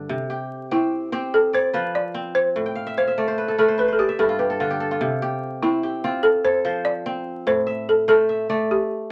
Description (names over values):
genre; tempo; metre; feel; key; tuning
west african traditional; 98 BPM (dotted quarters); 12/8; straight; C major; A4 = 440 Hz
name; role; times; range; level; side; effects
kora; arpeggios; 0.0-9.1 s; G2 to G5; -27 LUFS; equal; none
balafon; melody; 0.7-9.1 s; E4 to D5; -22 LUFS; equal; none
room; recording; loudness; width
moderate small room reverb, RT60 0.5 s; vinyl crackle; -22 LUFS; mono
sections
0.0-5.0 A section; 5.0-9.1 A section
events
kora fill 2.7-5.0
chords
0.1 C; 1.3 F5; 2.6 N.C.; 3.8 G; 5.0 C; 6.2 F; 7.5 Am